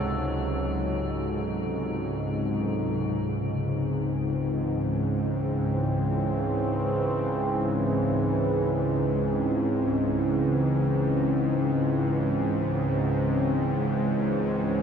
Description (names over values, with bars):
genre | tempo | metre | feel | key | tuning
dark ambient drone | free time | none | none | C# harmonic minor | A4 = 440 Hz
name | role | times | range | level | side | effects
sweeping resonant pad | sustained chords | 0.0-14.8 s | C#2 to A4 | -26 LUFS | equal | chorus, phaser
bowed-like drone | drone | 0.0-14.8 s | C#2 to G#2 | -28 LUFS | equal | built-in reverb
metallic inharmonic drone | texture | 0.0-3.0 s | D#4 | -38 LUFS | left 3 dB | chorus, built-in reverb
room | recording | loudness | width
wet huge ambient reverb, RT60 7.1 s | dark, warm production | -24 LUFS | side -7 dB against mid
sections
0.0-3.0 A section; 3.0-14.8 B section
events
none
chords
0.0 F#m/C#; 3.0 C#m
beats
free time